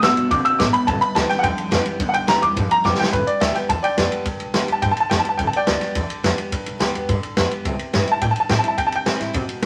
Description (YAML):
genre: rockabilly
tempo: 212 BPM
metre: 4/4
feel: straight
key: G mixolydian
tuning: A4 = 440 Hz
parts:
  - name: bright upright piano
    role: melody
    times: 0.0-9.7 s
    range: B4 to E6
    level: -22 LUFS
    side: equal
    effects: none
  - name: picked acoustic archtop guitar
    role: accompaniment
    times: 0.0-9.7 s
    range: G2 to G4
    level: -30 LUFS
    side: equal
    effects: none
  - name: electric guitar through a small old amp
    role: riff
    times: 0.0-3.1 s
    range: G2 to C4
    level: -28 LUFS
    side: equal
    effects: spring reverb
  - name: upright bass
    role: bass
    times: 0.0-9.7 s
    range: G1 to D3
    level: -29 LUFS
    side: equal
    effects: none
  - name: vintage drum kit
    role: drums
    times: 0.0-9.7 s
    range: kick drum, ride cymbal, snare drum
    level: -25 LUFS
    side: equal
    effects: none
room: light reverb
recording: vinyl crackle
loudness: -20 LUFS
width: mono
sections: 0.0-3.1 A section; 3.1-9.7 B section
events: upright piano solo 0.0-3.1; drum fill 2.8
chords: 0.0 D; 0.9 G; 7.7 C